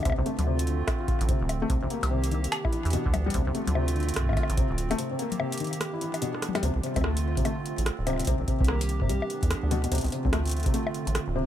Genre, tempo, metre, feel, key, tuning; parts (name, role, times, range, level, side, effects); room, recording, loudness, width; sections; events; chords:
IDM; 146 BPM; 4/4; swing 62% on 16ths; D dorian; A4 = 441 Hz
hollow soft pad; sustained chords; 0.0-11.5 s; D3 to G4; -34 LUFS; right 4 dB; chorus
felt-muted upright piano; arpeggios; 0.0-11.4 s; B2 to F4; -31 LUFS; left 4 dB; ping-pong delay
booming analog drum machine; drums; 0.0-11.3 s; bongos, hi-hat, rim click, toms; -33 LUFS; left 3 dB; ping-pong delay
deep acid bass; bass; 0.1-11.5 s; D1 to E2; -27 LUFS; equal
electronic kick drum; drums; 0.1-10.7 s; -28 LUFS; equal
little or no reverb; -25 LUFS; side -11 dB against mid
0.0-6.6 A section; 6.6-11.5 A section
break 5.0-6.6; drum fill 6.3-6.6
0.1 Dm7; 1.7 Cm7; 2.5 Em7; 3.3 Dm7; 5.0 Cm7; 5.8 Em7; 6.6 Dm7; 8.3 Cm7; 9.1 Em7; 9.9 Dm7